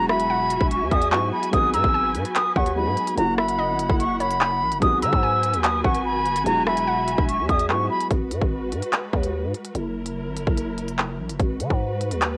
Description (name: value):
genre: hip hop, drill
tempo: 146 BPM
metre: 4/4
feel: half-time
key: G# minor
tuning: A4 = 439 Hz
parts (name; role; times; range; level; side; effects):
- silver concert flute; melody; 0.0-8.1 s; A#5 to E6; -25 LUFS; equal; cassette tape
- felt-muted upright piano; accompaniment; 0.0-8.1 s; F#3 to F#4; -32 LUFS; equal; cassette tape
- dark symphonic string section; sustained chords; 0.0-12.4 s; F#3 to G#5; -34 LUFS; equal; cassette tape
- growling 808-style bass; bass; 0.0-12.4 s; E1 to D#3; -29 LUFS; equal; none
- hollow square pluck; second line; 0.1-7.7 s; C#5 to A#5; -33 LUFS; equal; chorus, cassette tape, analog delay
- drill drum kit; drums; 0.1-12.3 s; handclaps, hi-hat, kick drum, rim click; -26 LUFS; equal; cassette tape
room: small room ambience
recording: home recording on cassette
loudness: -22 LUFS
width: mono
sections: 0.0-8.1 A section; 8.1-12.4 B section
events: none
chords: 0.0 Eadd9; 1.5 G#m7; 3.2 F#7; 4.8 G#m7; 6.5 Eadd9; 8.1 G#m7; 9.8 F#7; 11.4 G#m7